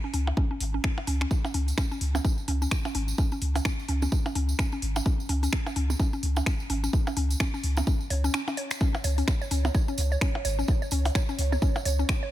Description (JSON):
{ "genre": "minimal techno", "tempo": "128 BPM", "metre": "4/4", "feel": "swing 59% on 16ths", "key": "unclear", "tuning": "A4 = 440 Hz", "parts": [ { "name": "mallet-like synth pluck", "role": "riff", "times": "0.0-12.3 s", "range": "C#4 to C#5", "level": "-33 LUFS", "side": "left 1 dB", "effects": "chorus, sidechain pumping, ping-pong delay" }, { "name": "punchy sub bass", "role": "bass", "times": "0.1-12.0 s", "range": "G#1 to C#2", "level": "-26 LUFS", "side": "equal", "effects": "sidechain pumping" }, { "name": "booming analog drum machine", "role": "drums", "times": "0.1-12.2 s", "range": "finger snaps, hi-hat", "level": "-34 LUFS", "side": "left 1 dB", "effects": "none" }, { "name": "percussion blips", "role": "percussion", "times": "0.3-11.8 s", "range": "none", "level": "-34 LUFS", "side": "right 2 dB", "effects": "digital delay" }, { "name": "electronic kick drum", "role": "drums", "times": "0.4-12.2 s", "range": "none", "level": "-26 LUFS", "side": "equal", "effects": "none" }, { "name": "tambourine", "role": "percussion", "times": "1.3-12.2 s", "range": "none", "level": "-40 LUFS", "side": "right 4 dB", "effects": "none" }, { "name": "pulsing gated texture", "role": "texture", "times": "8.8-12.3 s", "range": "C#5", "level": "-37 LUFS", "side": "right 8 dB", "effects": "chorus, built-in reverb, sidechain pumping" } ], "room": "little or no reverb", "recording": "none", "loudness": "-24 LUFS", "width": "side -14 dB against mid", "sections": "0.0-8.8 A section; 8.8-12.3 B section", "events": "break 8.3-8.8; drop 8.8-12.3", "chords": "0.0 C#5" }